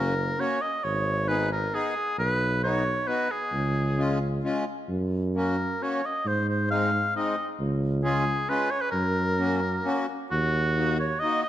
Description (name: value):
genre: alpine folk, alpine dance band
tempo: 133 BPM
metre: 3/4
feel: straight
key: F# major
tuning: A4 = 440 Hz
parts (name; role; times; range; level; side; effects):
- clear oboe; melody; 0.0-11.5 s; Gb4 to E#5; -27 LUFS; equal; none
- accordion; accompaniment; 0.0-11.4 s; G#3 to G#4; -31 LUFS; left 2 dB; none
- mellow tuba; bass; 0.0-11.2 s; F#1 to G#2; -28 LUFS; right 1 dB; none
room: moderate scoring stage reverb, RT60 1.8 s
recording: dark, warm production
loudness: -24 LUFS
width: side -12 dB against mid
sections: 0.0-10.3 A section; 10.3-11.5 B section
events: none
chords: 0.0 F#; 0.8 G#m; 2.2 B; 3.5 C#; 4.9 F#; 6.3 G#; 7.6 C#; 8.9 F#; 10.3 Ebm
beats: 0.39 | 0.84 1.29 1.74 | 2.19 2.64 3.08 | 3.53 3.99 4.44 | 4.90 5.35 5.81 | 6.26 6.71 7.16 | 7.60 8.05 8.49 | 8.94 9.39 9.86 | 10.31 10.77 11.23